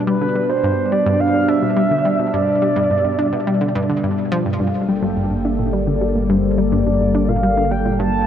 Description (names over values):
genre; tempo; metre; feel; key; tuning
ambient, sequencer-driven space music; 106 BPM; 4/4; straight; G minor from 4.6 s; A4 = 440 Hz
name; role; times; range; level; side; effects
phased analog pad; sustained chords; 0.0-8.3 s; B2 to A4; -20 LUFS; equal; phaser, chorus
mellow horn-like synth lead; melody; 0.1-8.3 s; B4 to A5; -21 LUFS; equal; wide subtle chorus, tape echo
analog pluck; riff; 0.1-8.1 s; G2 to D4; -21 LUFS; equal; chorus, tape echo
warm sub bass; bass; 4.6-8.3 s; G1; -23 LUFS; equal; none
room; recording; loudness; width
wet huge ambient reverb, RT60 7.7 s; none; -15 LUFS; side -9 dB against mid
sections
0.0-4.6 A section; 4.6-8.3 B section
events
filter sweep on synth arpeggio sound 0.0-4.6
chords
0.0 G; 4.6 Gmadd9